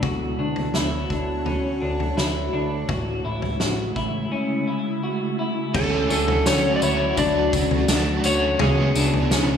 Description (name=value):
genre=dream pop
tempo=84 BPM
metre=4/4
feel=straight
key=unclear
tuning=A4 = 440 Hz
part: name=ethereal airy pad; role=sustained chords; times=0.0-9.6 s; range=B2 to C#5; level=-28 LUFS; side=equal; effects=ensemble chorus, built-in reverb, phaser
part: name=semi-hollow electric guitar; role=arpeggios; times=0.0-9.6 s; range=C#3 to F#4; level=-26 LUFS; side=left 2 dB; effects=wide subtle chorus, tape echo, slapback echo
part: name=fat analog bass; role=bass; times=0.0-9.6 s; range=A1 to D2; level=-26 LUFS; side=right 1 dB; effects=none
part: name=loose indie drum kit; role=drums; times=0.0-9.5 s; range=crash cymbal, kick drum, snare drum, tambourine, toms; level=-26 LUFS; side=equal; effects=none
part: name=crunchy overdriven guitar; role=accompaniment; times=5.7-9.6 s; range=C#3 to G#4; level=-28 LUFS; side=right 2 dB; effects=tremolo, analog chorus, slapback echo
part: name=electric slide guitar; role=melody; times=5.8-9.6 s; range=G#4 to D5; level=-24 LUFS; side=equal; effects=tape echo, slapback echo
room=wet lush hall reverb, RT60 1.8 s, studio ambience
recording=big arena sound, studio reverb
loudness=-20 LUFS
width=side -8 dB against mid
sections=0.0-5.7 A section; 5.7-9.6 B section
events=none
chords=0.0 Dmaj7; 2.9 Amaj7; 5.7 Dmaj7; 8.6 C#m7